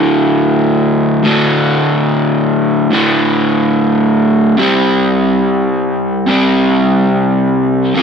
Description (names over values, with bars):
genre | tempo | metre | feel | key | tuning
rock | free time | none | none | unclear | A4 = 441 Hz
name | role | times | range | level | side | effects
crunchy overdriven guitar | solo | 0.0-8.0 s | D2 to C4 | -10 LUFS | equal | none
room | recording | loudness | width
light reverb | band playing live in one room | -10 LUFS | side -6 dB against mid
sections
0.0-8.0 A section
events
none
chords
0.0 D5; 4.6 C5